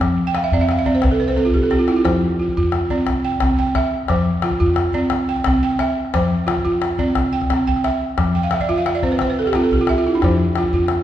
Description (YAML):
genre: west african traditional, West African string and xylophone music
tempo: 118 BPM (dotted quarters)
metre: 12/8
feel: straight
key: F lydian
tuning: A4 = 439 Hz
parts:
  - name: balafon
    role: arpeggios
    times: 0.0-11.0 s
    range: F3 to G5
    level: -17 LUFS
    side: right 1 dB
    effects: none
  - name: upright bass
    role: bass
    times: 0.0-11.0 s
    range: C2 to F2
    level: -22 LUFS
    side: left 1 dB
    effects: none
  - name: calabash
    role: percussion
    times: 0.0-11.0 s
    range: none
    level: -25 LUFS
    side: left 5 dB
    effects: none
room: wet recital hall reverb, RT60 1.5 s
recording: recorded in a church or concert hall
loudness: -16 LUFS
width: side -11 dB against mid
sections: 0.0-2.0 A section; 2.0-11.0 B section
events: balafon fill 0.3-2.0, 8.3-10.2; drum fill 1.4-2.0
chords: 0.0 F5; 1.0 Fmaj9#11/C; 2.0 F5; 3.1 C; 4.1 F5; 5.1 C; 6.1 F5; 7.2 C; 8.2 F5; 9.2 C; 10.2 F5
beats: | 0.01 0.52 1.03 1.54 | 2.05 2.56 3.07 3.58 | 4.09 4.60 5.11 5.62 | 6.14 6.65 7.16 7.67 | 8.18 8.69 9.20 9.71 | 10.22 10.73